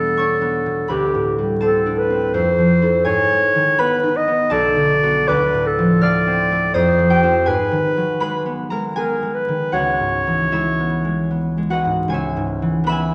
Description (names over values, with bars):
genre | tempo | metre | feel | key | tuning
classical, impressionist duo for clarinet and harp | 74-84 BPM | 3/4 | rubato | unclear | A4 = 437 Hz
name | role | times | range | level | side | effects
clear clarinet | melody | 0.0-11.7 s | G4 to D#5 | -20 LUFS | equal | none
concert harp | accompaniment | 0.0-13.1 s | B1 to F6 | -21 LUFS | equal | none
room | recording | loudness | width
wet recital hall reverb, RT60 1.4 s | recorded in a church or concert hall, vinyl crackle | -18 LUFS | mono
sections
0.0-12.1 A section; 12.1-13.1 A section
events
none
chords
0.0 Em9; 0.9 D7sus4; 2.3 Fmaj7; 3.1 G#m; 4.5 Bm7; 5.3 Dm7; 6.8 F5; 7.5 G#m7; 9.7 C#m7